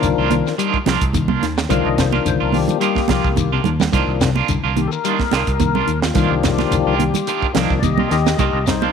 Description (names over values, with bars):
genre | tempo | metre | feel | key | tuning
afrobeat | 108 BPM | 4/4 | swing 54% on 16ths | C minor | A4 = 441 Hz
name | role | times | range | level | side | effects
tonewheel organ | accompaniment | 0.0-8.9 s | Eb3 to F5 | -21 LUFS | left 10 dB | slow rotary speaker, overdrive, chorus vibrato
mellow electric guitar | arpeggios | 0.0-8.9 s | C3 to G3 | -24 LUFS | left 8 dB | none
electric guitar at the edge of break-up | stabs | 0.0-8.9 s | Eb3 to F4 | -23 LUFS | right 12 dB | tremolo
fingered electric bass | bass | 0.0-8.9 s | C2 to Eb2 | -22 LUFS | equal | none
tight funk drum kit | drums | 0.0-8.8 s | hi-hat, kick drum, snare drum | -22 LUFS | right 4 dB | none
shekere | percussion | 0.0-8.9 s | none | -27 LUFS | left 4 dB | none
congas | percussion | 0.3-8.9 s | none | -23 LUFS | right 11 dB | none
room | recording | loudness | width
light reverb, small room ambience | 1960s-style stereo with parts hard left and right | -15 LUFS | side -7 dB against mid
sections
0.0-8.9 A section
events
tonewheel organ solo 0.0-8.9; drum fill 3.4-3.9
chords
0.0 Cm11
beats
0.03 0.59 1.15 | 1.70 2.26 2.82 3.37 | 3.93 4.49 5.04 5.60 | 6.16 6.72 7.27 7.83 | 8.39